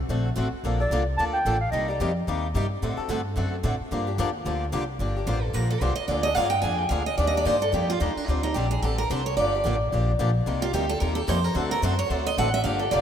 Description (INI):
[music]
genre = acoustic string swing (jazz manouche)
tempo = 220 BPM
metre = 4/4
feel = swing 58% on 8ths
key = G minor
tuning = A4 = 440 Hz
[part]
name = upright bass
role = bass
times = 0.0-13.0 s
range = F1 to A2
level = -27 LUFS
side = equal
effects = none
[part]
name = picked steel-string acoustic guitar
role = accompaniment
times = 0.1-13.0 s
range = C3 to A4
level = -33 LUFS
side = right 5 dB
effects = none
[part]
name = picked swing-style acoustic guitar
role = accompaniment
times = 0.1-13.0 s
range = C3 to A4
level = -31 LUFS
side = left 7 dB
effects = none
[part]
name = breathy clarinet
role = melody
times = 0.8-2.2 s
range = D5 to A5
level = -27 LUFS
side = right 1 dB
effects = none
[part]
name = picked steel-string acoustic guitar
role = second line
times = 5.3-13.0 s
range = D4 to Ab5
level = -25 LUFS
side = right 2 dB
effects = none
[sound]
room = moderate lush hall reverb, RT60 2.6 s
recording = rough home demo mix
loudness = -23 LUFS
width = side -9 dB against mid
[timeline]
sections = 0.0-5.0 A section; 5.0-13.0 B section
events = steel-string acoustic guitar solo 5.0-13.0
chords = 0.0 D7b13; 0.6 Bbmaj7; 1.7 Cm9; 2.8 D7; 3.9 Gm7; 6.1 Bb7; 7.2 Ebmaj7; 8.3 D7sus4; 9.4 Gm7; 10.5 Cm7; 11.6 D7